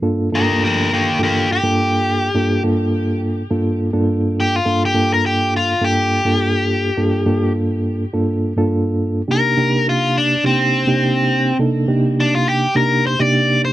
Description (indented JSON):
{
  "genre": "blues",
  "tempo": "104 BPM",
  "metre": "4/4",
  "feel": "straight",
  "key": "G minor",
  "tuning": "A4 = 440 Hz",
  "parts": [
    { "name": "mellow reed electric piano", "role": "accompaniment", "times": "0.0-13.7 s", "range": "G2 to A4", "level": "-17 LUFS", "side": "right 1 dB", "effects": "fast tremolo" },
    { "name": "biting overdriven guitar", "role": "melody", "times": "0.4-13.7 s", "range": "Bb3 to D5", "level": "-18 LUFS", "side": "left 2 dB", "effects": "none" }
  ],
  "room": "light reverb",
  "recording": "dry, close 1970s-style studio recording",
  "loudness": "-15 LUFS",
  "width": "side -14 dB against mid",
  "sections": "0.0-13.7 A section",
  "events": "overdriven electric guitar solo 0.0-13.7",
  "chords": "0.0 Gm9; 9.3 Cm9"
}